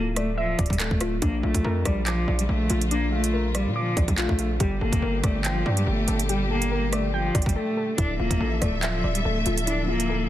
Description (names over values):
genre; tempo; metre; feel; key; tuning
hip hop, drill; 142 BPM; 4/4; half-time; D minor; A4 = 440 Hz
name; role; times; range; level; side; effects
rich cello; melody; 0.0-10.3 s; F3 to D4; -28 LUFS; equal; low-pass filter
warbly dusty pluck; accompaniment; 0.0-10.3 s; D4 to D6; -30 LUFS; left 3 dB; chorus, low-pass filter
distorted 808-style bass; bass; 0.0-10.3 s; D1 to Bb2; -26 LUFS; equal; distortion
drill drum kit; drums; 0.2-10.1 s; handclaps, hi-hat, kick drum, rim click; -26 LUFS; right 1 dB; none
dark studio string section; sustained chords; 1.2-10.3 s; Bb2 to E5; -32 LUFS; left 1 dB; none
room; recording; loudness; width
digital ambience; dense, heavily limited modern master; -22 LUFS; side -13 dB against mid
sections
0.0-8.0 A section; 8.0-10.3 A section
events
break 7.6-8.0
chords
0.0 Dmadd9; 1.2 Bb; 4.6 Gmadd9; 8.0 Dmadd9